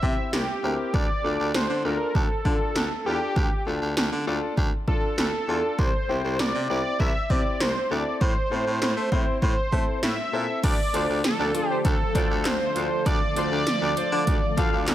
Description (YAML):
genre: synth-pop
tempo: 99 BPM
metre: 4/4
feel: straight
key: D minor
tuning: A4 = 440 Hz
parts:
  - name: octave-doubled lead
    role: melody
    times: 0.0-14.9 s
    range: G4 to E5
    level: -27 LUFS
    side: right 1 dB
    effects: chorus
  - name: bright concert grand piano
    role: accompaniment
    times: 0.0-14.8 s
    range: C4 to C5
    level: -31 LUFS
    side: left 4 dB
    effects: none
  - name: breathy baritone saxophone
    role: bass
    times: 0.0-14.9 s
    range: C2 to A3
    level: -29 LUFS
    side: equal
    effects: none
  - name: 80s electronic pad drums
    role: drums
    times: 0.0-14.9 s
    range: crash cymbal, handclaps, hi-hat, kick drum, snare drum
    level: -25 LUFS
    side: equal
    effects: none
  - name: soft string machine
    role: sustained chords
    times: 10.9-14.9 s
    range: D3 to A4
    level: -32 LUFS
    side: right 1 dB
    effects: phaser, ensemble chorus
  - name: analog synth brass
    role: second line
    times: 10.9-14.7 s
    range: C5 to F5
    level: -32 LUFS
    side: right 1 dB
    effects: chorus, digital delay
room: light reverb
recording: none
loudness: -22 LUFS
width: side -12 dB against mid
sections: 0.0-10.6 A section; 10.6-14.9 B section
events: none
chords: 0.0 Cadd9; 0.9 Dm; 5.8 Cadd9; 8.2 Am; 10.6 Dm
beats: 0.33 | 0.94 1.54 2.15 2.76 | 3.36 3.97 4.58 5.18 | 5.79 6.39 7.00 7.61 | 8.21 8.82 9.42 10.03 | 10.64 11.24 11.85 12.45 | 13.06 13.67 14.27 14.88